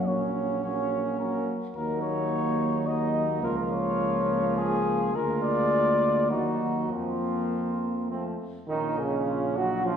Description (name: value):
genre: classical, brass quintet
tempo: 99-109 BPM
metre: 3/4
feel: straight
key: Bb minor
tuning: A4 = 440 Hz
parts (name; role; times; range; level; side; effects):
- dark trumpet; melody; 0.0-10.0 s; Db4 to Eb5; -29 LUFS; left 4 dB; none
- warm flugelhorn; second line; 0.0-10.0 s; C4 to Gb4; -31 LUFS; right 6 dB; none
- clear trombone; accompaniment; 0.0-10.0 s; Db3 to Ab3; -33 LUFS; right 1 dB; none
- warm French horn; accompaniment; 0.0-10.0 s; A3 to F4; -32 LUFS; left 1 dB; none
- mellow tuba; bass; 0.0-10.0 s; Bb1 to F2; -32 LUFS; right 2 dB; none
room: wet recital hall reverb, RT60 1.4 s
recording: recorded in a church or concert hall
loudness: -24 LUFS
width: side -8 dB against mid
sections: 0.0-8.7 A section; 8.7-10.0 B section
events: none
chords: 0.1 Gb/Bb; 1.8 Ebm; 3.4 Bbm/Db; 5.1 Bb7/D; 6.3 Ebm; 6.9 Fsus4; 8.1 F; 8.7 Bbm